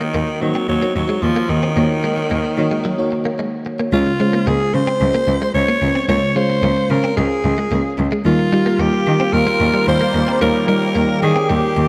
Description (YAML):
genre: pop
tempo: 111 BPM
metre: 4/4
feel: straight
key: unclear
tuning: A4 = 439 Hz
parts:
  - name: raspy alto saxophone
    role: melody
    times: 0.0-11.9 s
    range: Eb3 to Db5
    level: -22 LUFS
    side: equal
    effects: tape echo
  - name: mellow FM electric piano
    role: accompaniment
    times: 0.0-11.9 s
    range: Db3 to F5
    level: -24 LUFS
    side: equal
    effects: chorus
  - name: direct-recorded clean electric guitar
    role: riff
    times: 0.0-11.8 s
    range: Gb3 to C4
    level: -27 LUFS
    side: equal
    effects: ensemble chorus, tape echo
  - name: rich cello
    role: bass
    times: 0.1-11.8 s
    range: Db2 to Eb3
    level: -22 LUFS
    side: equal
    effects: none
  - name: sweeping resonant pad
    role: sustained chords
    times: 8.3-11.9 s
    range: Eb3 to G4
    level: -24 LUFS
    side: equal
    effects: chorus
room: wet plate reverb, RT60 3.2 s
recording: dreamy mix soaked in reverb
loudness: -17 LUFS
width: mono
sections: 0.0-3.9 A section; 3.9-11.9 B section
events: break 2.8-3.9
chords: 0.0 Ebm7; 3.9 Db; 8.3 Ebadd9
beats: 0.14 0.69 1.23 | 1.77 2.31 2.85 3.39 | 3.93 4.47 5.01 5.55 | 6.09 6.63 7.17 7.71 | 8.25 8.79 9.33 9.87 | 10.41 10.96 11.50